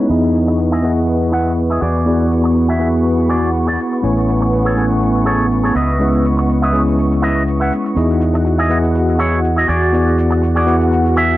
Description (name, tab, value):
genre	nu-disco, nu disco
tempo	122 BPM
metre	4/4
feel	swing 54% on 16ths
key	E major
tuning	A4 = 441 Hz
part	bell-like tine electric piano	accompaniment	0.0-11.4 s	G#3 to D#6	-17 LUFS	left 1 dB	medium stereo tremolo
part	lush unison pad	sustained chords	0.0-11.4 s	B3 to C#6	-20 LUFS	right 1 dB	chorus, phaser
part	electric guitar with an envelope filter	riff	0.0-11.4 s	E4 to F#5	-20 LUFS	right 1 dB	lush chorus, low-pass filter
part	fingered electric bass with an envelope filter	bass	0.1-11.4 s	A1 to E2	-18 LUFS	equal	none
part	cabasa	drums	0.1-11.4 s	none	-48 LUFS	right 1 dB	none
room	moderate plate reverb, RT60 1.2 s, digital ambience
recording	dry, gritty hardware recording, cassette tape, low-pass filter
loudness	-13 LUFS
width	side -16 dB against mid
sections	0.0-11.4 A section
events	filter sweep on clean electric guitar 0.0-11.4; filter sweep 0.0-11.4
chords	0.1 Emaj7; 1.8 E9; 4.0 Amaj7; 5.8 C#m9; 8.0 Emaj7; 9.7 E9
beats	| 0.10 0.59 1.08 1.57 | 2.07 2.56 3.05 3.54 | 4.03 4.53 5.02 5.51 | 6.00 6.49 6.99 7.48 | 7.97 8.46 8.95 9.44 | 9.94 10.43 10.92